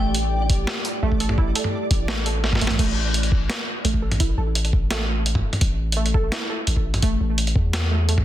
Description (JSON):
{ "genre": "half-time drum and bass", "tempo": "170 BPM", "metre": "4/4", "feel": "half-time", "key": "unclear", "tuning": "A4 = 440 Hz", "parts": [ { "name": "deep dark ambient pad", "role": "sustained chords", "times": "0.0-2.8 s", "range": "A3 to G4", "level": "-33 LUFS", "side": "left 1 dB", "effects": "chorus, built-in reverb, sidechain pumping" }, { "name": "warbly dusty pluck", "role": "arpeggios", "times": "0.0-8.2 s", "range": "A3 to A4", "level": "-29 LUFS", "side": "right 4 dB", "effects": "chorus, tape echo" }, { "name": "long sustained 808-style bass", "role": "bass", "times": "0.0-8.2 s", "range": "A1 to E2", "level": "-23 LUFS", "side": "equal", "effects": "none" }, { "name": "flickering grainy texture", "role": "texture", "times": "0.0-2.8 s", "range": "D5", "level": "-36 LUFS", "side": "right 2 dB", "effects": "built-in reverb" }, { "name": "boom bap sampler-style drum kit", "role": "drums", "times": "0.1-8.2 s", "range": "crash cymbal, hi-hat, snare drum, toms", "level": "-25 LUFS", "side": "equal", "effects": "none" }, { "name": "electronic kick drum", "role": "drums", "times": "0.5-8.2 s", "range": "none", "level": "-21 LUFS", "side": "equal", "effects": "none" } ], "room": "little or no reverb", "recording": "dense, heavily limited modern master", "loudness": "-19 LUFS", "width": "side -13 dB against mid", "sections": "0.0-2.8 A section; 2.8-8.2 A section", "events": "drop 0.0-2.8, 2.8-8.2; drum fill 2.4-2.8", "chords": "0.0 A5", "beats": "0.32 0.67 1.03 | 1.38 1.73 2.08 2.44 | 2.79 3.14 3.50 3.85 | 4.20 4.55 4.91 5.26 | 5.61 5.97 6.32 6.67 | 7.03 7.38 7.73 8.08" }